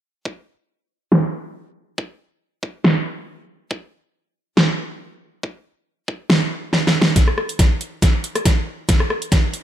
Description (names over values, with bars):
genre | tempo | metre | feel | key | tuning
heavy wobble dubstep | 139 BPM | 4/4 | swing 53% on 16ths, half-time | none | none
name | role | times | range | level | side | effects
electronic kick drum | drums | 0.3-9.4 s | none | -17 LUFS | equal | overdrive, high-pass filter on kick, high-pass filter on room
dubstep drum kit | drums | 1.1-9.6 s | hi-hat, rim click, snare drum | -17 LUFS | equal | overdrive, low-pass filter on snare, low-pass filter on hats, low-pass filter on room
room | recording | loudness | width
light reverb | none | -16 LUFS | side -11 dB against mid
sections
0.3-7.2 A section; 7.2-9.6 B section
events
filter sweep on drum 0.3-7.2; kick drops out 6.3-7.2; drum fill 6.7-7.2, 7.2-9.6; build-up 7.2-9.6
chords
none